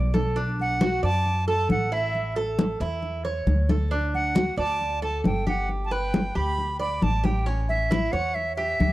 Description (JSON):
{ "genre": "latin, Cuban son and guajira", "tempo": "135 BPM", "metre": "4/4", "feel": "straight", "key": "unclear", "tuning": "A4 = 440 Hz", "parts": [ { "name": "Cuban tres", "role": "arpeggios", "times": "0.0-8.9 s", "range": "C#4 to D5", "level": "-29 LUFS", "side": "right 2 dB", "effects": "none" }, { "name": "upright bass", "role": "bass", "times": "0.0-8.9 s", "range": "G1 to F#2", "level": "-27 LUFS", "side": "equal", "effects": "none" }, { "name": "congas", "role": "percussion", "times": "0.1-8.9 s", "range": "none", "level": "-27 LUFS", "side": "left 1 dB", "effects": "none" }, { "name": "breathy bright silver concert flute", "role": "melody", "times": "0.6-8.9 s", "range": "E5 to B5", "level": "-27 LUFS", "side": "right 1 dB", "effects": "none" } ], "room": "little or no reverb", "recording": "dry, close 1970s-style studio recording, vinyl crackle", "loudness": "-22 LUFS", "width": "side -16 dB against mid", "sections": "0.0-8.9 A section", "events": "none", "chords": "0.4 Bm7; 2.1 A; 3.9 D; 5.7 G; 7.5 A7", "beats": "| 0.36 0.81 1.25 1.70 | 2.14 2.58 3.03 3.47 | 3.92 4.36 4.80 5.25 | 5.69 6.13 6.58 7.02 | 7.47 7.91 8.36 8.80" }